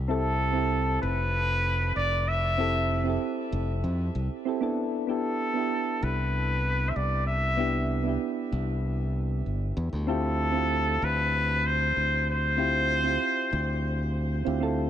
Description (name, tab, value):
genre	sunset chillout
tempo	96 BPM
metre	4/4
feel	straight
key	C major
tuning	A4 = 440 Hz
part	modern bright fingered electric bass	bass	0.0-14.9 s	F1 to F2	-28 LUFS	equal	none
part	trumpet with straight mute	melody	0.1-14.4 s	A4 to E5	-28 LUFS	left 1 dB	ping-pong delay
part	soft electric-piano-like synth keys	accompaniment	0.1-14.9 s	B3 to A4	-31 LUFS	moving between left 4 dB and right 8 dB	chorus, auto-pan, ping-pong delay
room	light reverb, small room ambience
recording	faint mains hum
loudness	-25 LUFS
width	side -10 dB against mid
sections	0.0-14.9 A section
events	none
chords	0.0 Fmaj9; 4.8 Cmaj9; 10.1 Dm11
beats	| 0.09 0.71 1.34 1.96 | 2.59 3.21 3.84 4.46 | 5.09 5.71 6.34 6.96 | 7.59 8.21 8.84 9.46 | 10.09 10.71 11.34 11.96 | 12.59 13.21 13.84 14.46